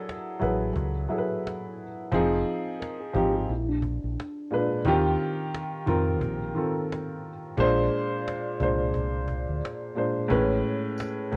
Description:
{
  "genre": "lo-fi hip hop",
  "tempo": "88 BPM",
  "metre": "4/4",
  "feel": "swing 59% on 16ths",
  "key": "unclear",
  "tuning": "A4 = 440 Hz",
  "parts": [
    { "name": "dark upright piano", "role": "accompaniment", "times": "0.0-11.4 s", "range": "A2 to B#4", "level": "-29 LUFS", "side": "equal", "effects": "cassette tape, low-pass filter, plate reverb" },
    { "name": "cajon", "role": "drums", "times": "0.1-11.4 s", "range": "none", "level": "-37 LUFS", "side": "equal", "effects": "vintage 12-bit sampler grit" },
    { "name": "deep dub fingered electric bass", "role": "bass", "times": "0.4-11.4 s", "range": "F1 to E#2", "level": "-32 LUFS", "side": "equal", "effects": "none" },
    { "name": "mellow tine electric piano", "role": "second line", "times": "2.8-4.7 s", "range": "D4 to A#4", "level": "-36 LUFS", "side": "equal", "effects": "phaser, low-pass filter, tape echo, plate reverb" },
    { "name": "tambourine", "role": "percussion", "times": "11.0-11.2 s", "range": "none", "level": "-58 LUFS", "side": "equal", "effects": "none" }
  ],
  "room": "moderate studio reverb, RT60 0.5 s",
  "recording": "rough home demo mix, cassette tape",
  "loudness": "-27 LUFS",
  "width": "mono",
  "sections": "0.0-11.4 A section",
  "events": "none",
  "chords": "0.0 F#m9; 2.1 Fm7; 3.5 A#7b9; 4.8 D#69; 7.6 A#9; 10.3 Amaj9"
}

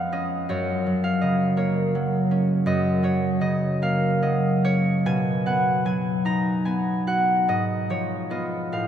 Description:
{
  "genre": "classical, solo harp piece",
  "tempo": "44-56 BPM (dotted quarters)",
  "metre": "6/8",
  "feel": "rubato",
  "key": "unclear",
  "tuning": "A4 = 440 Hz",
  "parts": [
    { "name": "concert harp", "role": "solo", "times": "0.0-8.9 s", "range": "E#2 to Bb5", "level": "-21 LUFS", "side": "equal", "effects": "none" }
  ],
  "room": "wet cathedral reverb, RT60 5.0 s",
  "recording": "none",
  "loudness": "-21 LUFS",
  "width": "side -9 dB against mid",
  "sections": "0.0-8.9 A section",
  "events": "none",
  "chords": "0.5 F#; 5.0 B; 7.5 Fm7b5/Ab"
}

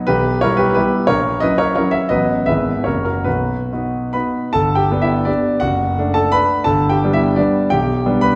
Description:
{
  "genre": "classical, romantic triple-time dance for piano with dotted rhythms",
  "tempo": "128-188 BPM",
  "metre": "3/4",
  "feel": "rubato",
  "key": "B major, G major from 4.5 s",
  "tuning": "A4 = 440 Hz",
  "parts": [
    { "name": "clear concert grand piano", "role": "solo", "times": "0.0-8.4 s", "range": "F#1 to B5", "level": "-17 LUFS", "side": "equal", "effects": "none" }
  ],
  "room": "wet recital hall reverb, RT60 1.7 s",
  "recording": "heard from further back in the room",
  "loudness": "-17 LUFS",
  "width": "mono",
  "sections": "0.0-4.5 A section; 4.5-8.4 B section",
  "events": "none",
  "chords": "0.1 Em/B; 1.1 F#7/A#; 2.1 B7/A; 2.5 E/G#; 2.9 F#; 3.3 B; 4.5 G; 5.6 D/F#; 6.7 G; 7.7 G/B"
}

